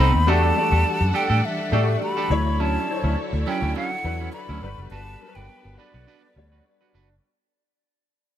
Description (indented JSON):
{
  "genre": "pop",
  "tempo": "103 BPM",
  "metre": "4/4",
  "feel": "swing 54% on 16ths",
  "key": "unclear",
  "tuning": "A4 = 441 Hz",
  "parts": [
    { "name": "breathy mellow silver concert flute", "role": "melody", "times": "0.0-6.7 s", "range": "D5 to B5", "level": "-26 LUFS", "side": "left 1 dB", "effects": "none" },
    { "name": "clear concert grand piano", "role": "accompaniment", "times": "0.0-7.3 s", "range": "F#3 to D5", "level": "-28 LUFS", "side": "left 4 dB", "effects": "ensemble chorus" },
    { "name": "rich studio string section", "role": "sustained chords", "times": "0.0-7.2 s", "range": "D3 to F#5", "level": "-33 LUFS", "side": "equal", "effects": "none" },
    { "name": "semi-hollow electric guitar", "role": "riff", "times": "0.0-7.1 s", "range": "F#3 to B4", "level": "-28 LUFS", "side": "right 8 dB", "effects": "wide subtle chorus" },
    { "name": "vintage muted fingered electric bass", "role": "bass", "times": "0.0-7.2 s", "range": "F#1 to A2", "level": "-22 LUFS", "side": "equal", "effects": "none" }
  ],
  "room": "little or no reverb",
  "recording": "none",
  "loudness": "-19 LUFS",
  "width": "side -11 dB against mid",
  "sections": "0.0-7.2 A section",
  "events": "fade-out 0.0-7.2",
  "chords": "0.3 Em11; 2.3 Dmaj9; 4.6 Gmaj7"
}